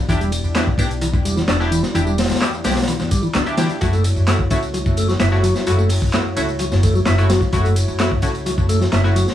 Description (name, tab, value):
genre	breakbeat, breaks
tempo	129 BPM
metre	4/4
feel	straight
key	unclear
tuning	A4 = 440 Hz
part	dark analog pad	sustained chords	0.0-9.3 s	A3 to D5	-27 LUFS	equal	chorus, vintage 12-bit sampler grit, sidechain pumping
part	percussive tonewheel organ	riff	0.1-9.3 s	E3 to E4	-23 LUFS	equal	slow rotary speaker, tube saturation, tape echo
part	band-passed chord stab	stabs	0.1-9.1 s	A3 to G4	-25 LUFS	left 1 dB	chorus, tape echo
part	upright bass	bass	0.1-9.2 s	E1 to F#2	-19 LUFS	equal	none
part	crunchy breakbeat drum kit	drums	0.1-9.3 s	hi-hat, kick drum, snare drum	-21 LUFS	left 1 dB	none
part	punchy analog drum machine	drums	0.1-9.3 s	handclaps, ride cymbal, tambourine	-28 LUFS	equal	none
room	light reverb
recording	vinyl crackle, small room ambience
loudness	-15 LUFS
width	side -11 dB against mid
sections	0.0-9.3 A section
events	none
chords	0.0 Em7; 3.8 F#m7